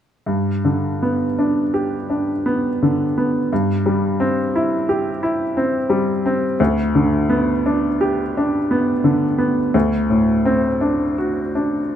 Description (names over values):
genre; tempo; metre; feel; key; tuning
classical, romantic nocturne for solo piano; 57 BPM (dotted quarters); 9/8; uneven beats, rubato; G major; A4 = 440 Hz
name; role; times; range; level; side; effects
clear upright piano; solo; 0.3-12.0 s; D2 to G4; -16 LUFS; equal; none
room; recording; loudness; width
moderate recital hall reverb, RT60 1.4 s; close, detailed microphones; -16 LUFS; side -10 dB against mid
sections
0.3-12.0 A section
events
none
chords
0.3 G; 3.5 C/G; 6.6 G/D; 9.7 D7